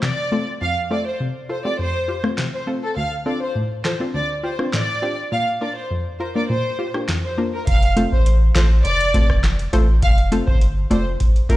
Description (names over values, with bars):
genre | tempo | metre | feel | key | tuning
dancehall | 102 BPM | 4/4 | straight | F major | A4 = 440 Hz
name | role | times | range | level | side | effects
warm studio violin section | melody | 0.0-11.6 s | A4 to F5 | -24 LUFS | equal | tape echo
analog pluck | accompaniment | 0.0-11.6 s | D2 to D5 | -23 LUFS | left 1 dB | chorus, sidechain pumping
booming analog drum machine | drums | 0.0-11.6 s | handclaps, hi-hat, kick drum, rim click, snare drum | -19 LUFS | equal | vintage 12-bit sampler grit
punchy sub bass | bass | 7.7-11.2 s | F1 to A1 | -17 LUFS | equal | none
room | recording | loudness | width
little or no reverb | played on a big sound system in a bare room, stone room reverb | -17 LUFS | side -16 dB against mid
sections
0.0-7.7 A section; 7.7-11.6 B section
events
none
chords
0.0 F; 3.0 Dm7; 5.3 Bb; 7.7 F